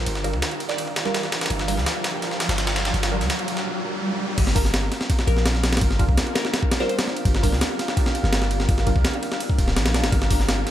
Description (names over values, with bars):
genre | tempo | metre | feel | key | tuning
drum and bass, jungle | 167 BPM | 4/4 | straight | G minor | A4 = 440 Hz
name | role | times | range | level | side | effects
warm 808-style bass | bass | 0.0-10.7 s | D1 to D2 | -23 LUFS | equal | none
riser | sound effects | 0.0-4.4 s | none | -29 LUFS | equal | none
breakbeat sampler-style drum kit | drums | 0.1-10.7 s | crash cymbal, hi-hat, kick drum, ride cymbal, snare drum | -22 LUFS | equal | high-pass filter on kick, high-pass filter on cymbals, high-pass filter on snare, high-pass filter on hats, high-pass filter on room
filtered dub chord stab | stabs | 0.2-10.4 s | G3 to Bb4 | -31 LUFS | right 2 dB | phaser, wide subtle chorus, dub echo
glassy wavetable pluck | melody | 0.7-1.1, 5.3-7.0 s | Bb4 to D5 | -33 LUFS | left 3 dB | chorus, dub echo
room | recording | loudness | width
light reverb | none | -20 LUFS | side -12 dB against mid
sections
0.0-4.4 A section; 4.4-10.7 B section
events
build-up 0.0-4.4; riser 0.0-4.4; break 3.7-4.4; drop 4.4-10.7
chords
0.0 Gm7